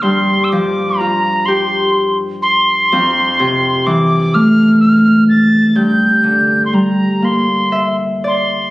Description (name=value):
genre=celtic folk, Celtic slow air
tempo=42 BPM (dotted quarters)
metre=6/8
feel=rubato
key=G dorian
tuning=A4 = 439 Hz
part: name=mellow wooden whistle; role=melody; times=0.0-8.7 s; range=Bb5 to A6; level=-14 LUFS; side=equal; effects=none
part: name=Celtic harp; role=accompaniment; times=0.0-8.7 s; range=F2 to E5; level=-13 LUFS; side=equal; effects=none
room=wet recital hall reverb, RT60 1.6 s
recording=recorded on a phone in the room, club reverb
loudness=-11 LUFS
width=side -18 dB against mid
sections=0.0-8.7 A section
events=harp fill 7.2-8.7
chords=0.0 G7sus4; 2.9 Fmaj7; 5.7 Gm